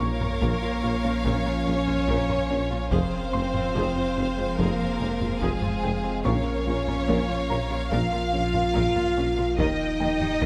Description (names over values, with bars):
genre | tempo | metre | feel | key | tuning
cinematic, hybrid orchestral and electronic film score | 72 BPM | 4/4 | straight | Bb dorian | A4 = 441 Hz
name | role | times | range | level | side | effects
warm symphonic violin section | melody | 0.0-10.5 s | Ab4 to F5 | -34 LUFS | equal | none
rich symphonic violin section | second line | 0.0-10.5 s | Eb5 to G5 | -39 LUFS | equal | none
dark symphonic viola section | accompaniment | 0.0-10.5 s | C4 to Db5 | -37 LUFS | equal | none
bowed-like drone | sustained chords | 0.0-10.5 s | F3 to Bb4 | -37 LUFS | equal | none
mellow French horn section | sustained chords | 0.0-10.5 s | Ab3 to F4 | -31 LUFS | equal | none
soft round pluck | arpeggios | 0.0-10.5 s | Eb3 to Bb4 | -38 LUFS | equal | none
mellow tuba | bass | 0.0-10.5 s | F1 to Eb2 | -36 LUFS | equal | none
pure sine sub bass | bass | 0.0-10.5 s | Eb1 to Bb1 | -35 LUFS | equal | none
rich symphonic cello section | bass | 0.0-10.5 s | F2 to Eb3 | -35 LUFS | equal | none
warm studio double bass section | bass | 0.0-10.5 s | F1 to Eb2 | -35 LUFS | equal | none
felt-muted upright piano | texture | 0.0-10.5 s | Bb4 to Db6 | -40 LUFS | equal | none
taiko ensemble | drums | 0.2-10.5 s | none | -36 LUFS | equal | none
room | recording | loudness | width
moderate scoring stage reverb, RT60 2.1 s | close, detailed microphones | -25 LUFS | mono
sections
0.0-10.5 A section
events
none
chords
0.0 Bbm; 2.9 Fm; 6.2 Bbm; 9.6 Eb